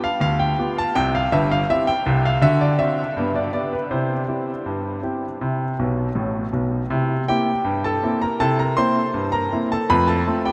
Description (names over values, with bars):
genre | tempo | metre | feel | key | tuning
ragtime piano | 81 BPM | 2/4 | straight | C major | A4 = 440 Hz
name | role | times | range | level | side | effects
clear grand piano | solo | 0.0-10.5 s | G1 to C6 | -21 LUFS | equal | tape echo
room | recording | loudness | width
wet huge ambient reverb, RT60 6.7 s | dreamy mix soaked in reverb | -21 LUFS | mono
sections
0.0-6.9 A section; 6.9-10.5 B section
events
grand piano fill 5.8-6.9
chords
0.0 G7; 1.0 C; 2.4 D7; 3.2 G; 3.9 C; 6.9 C7; 9.9 F